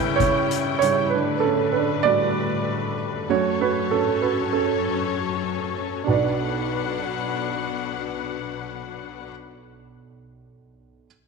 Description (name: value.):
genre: piano-driven pop.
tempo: 97 BPM.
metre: 4/4.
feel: straight.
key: B minor.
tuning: A4 = 441 Hz.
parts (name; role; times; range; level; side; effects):
dark upright piano; accompaniment; 0.0-11.1 s; B1 to D5; -22 LUFS; right 7 dB; none.
rich studio string section; sustained chords; 0.0-9.3 s; F#2 to G5; -27 LUFS; left 11 dB; none.
soft-mallet drum kit; drums; 0.2-1.0 s; hi-hat, kick drum; -27 LUFS; left 5 dB; none.
room: wet echo chamber reverb, RT60 2.1 s.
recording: 1960s-style stereo with parts hard left and right, faint mains hum.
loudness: -21 LUFS.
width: side -4 dB against mid.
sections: 0.0-6.1 A section; 6.1-8.6 B section.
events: upright piano solo 0.0-6.1.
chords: 0.0 C#dim; 1.1 A7sus4; 3.3 F#m; 6.1 Bm.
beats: 0.51 | 1.13 1.75 2.37 2.98 | 3.60 4.22 4.84 5.46 | 6.08 6.70 7.32 7.94.